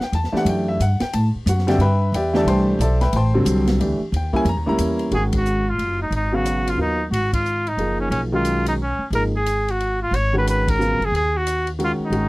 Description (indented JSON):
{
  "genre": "modal jazz",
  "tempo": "180 BPM",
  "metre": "3/4",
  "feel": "swing 62% on 8ths",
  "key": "G# dorian from 5.1 s",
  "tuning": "A4 = 440 Hz",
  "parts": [
    { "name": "clear concert grand piano", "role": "accompaniment", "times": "0.0-12.3 s", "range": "C#3 to C6", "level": "-22 LUFS", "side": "equal", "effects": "none" },
    { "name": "upright bass", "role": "bass", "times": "0.0-12.3 s", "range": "F#1 to A2", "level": "-21 LUFS", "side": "equal", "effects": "none" },
    { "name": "open jazz drum kit", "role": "drums", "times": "0.0-12.2 s", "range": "hi-hat, kick drum, ride cymbal, snare drum", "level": "-31 LUFS", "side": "equal", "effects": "none" },
    { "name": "clear trumpet", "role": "melody", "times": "5.1-12.3 s", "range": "C#4 to C#5", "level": "-22 LUFS", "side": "equal", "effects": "none" }
  ],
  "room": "light reverb",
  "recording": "dry, close 1970s-style studio recording",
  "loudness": "-18 LUFS",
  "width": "side -21 dB against mid",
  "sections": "0.0-5.1 A section; 5.1-12.3 B section",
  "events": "band accent 5.3, 7.3, 10.6",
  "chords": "0.0 Em11; 1.1 Am11; 4.1 D#7b9; 5.1 G#m11",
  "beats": "| 0.13 0.46 0.80 | 1.13 1.46 1.80 | 2.13 2.46 2.79 | 3.13 3.46 3.79 | 4.12 4.46 4.79 | 5.12 5.46 5.79 | 6.12 6.46 6.79 | 7.12 7.46 7.79 | 8.12 8.46 8.79 | 9.12 9.46 9.79 | 10.12 10.45 10.79 | 11.12 11.45 11.79 | 12.12"
}